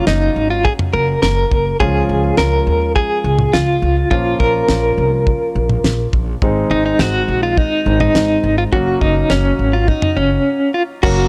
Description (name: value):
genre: synth-pop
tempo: 104 BPM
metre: 4/4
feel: straight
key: unclear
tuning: A4 = 440 Hz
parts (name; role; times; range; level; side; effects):
- direct-recorded clean electric guitar; melody; 0.0-11.3 s; Db4 to Bb4; -19 LUFS; equal; tremolo
- warm grand piano; accompaniment; 0.0-11.3 s; Eb3 to Bb4; -24 LUFS; equal; none
- upright bass; bass; 0.1-11.3 s; Gb1 to Eb2; -21 LUFS; equal; tube saturation
- damped 70s drum kit; drums; 0.1-11.2 s; crash cymbal, kick drum, snare drum, toms; -20 LUFS; equal; none
room: small room ambience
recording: dry, gritty hardware recording, transformer saturation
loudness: -15 LUFS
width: mono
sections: 0.0-11.0 A section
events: break 10.5-11.0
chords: 0.0 Gb; 1.8 Db; 4.1 Bbm; 6.4 Ab; 8.7 Gb